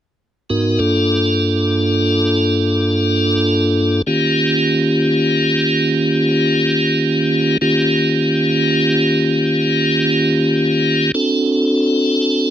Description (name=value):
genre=blues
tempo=free time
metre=none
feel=none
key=G minor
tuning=A4 = 440 Hz
part: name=tonewheel organ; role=solo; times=0.5-12.5 s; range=G2 to Bb4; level=-13 LUFS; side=equal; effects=slow rotary speaker, overdrive
room=light reverb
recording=dry, close 1970s-style studio recording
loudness=-13 LUFS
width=side -10 dB against mid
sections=0.5-12.5 A section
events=none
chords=0.5 Gm7; 4.1 Eb7; 11.1 D7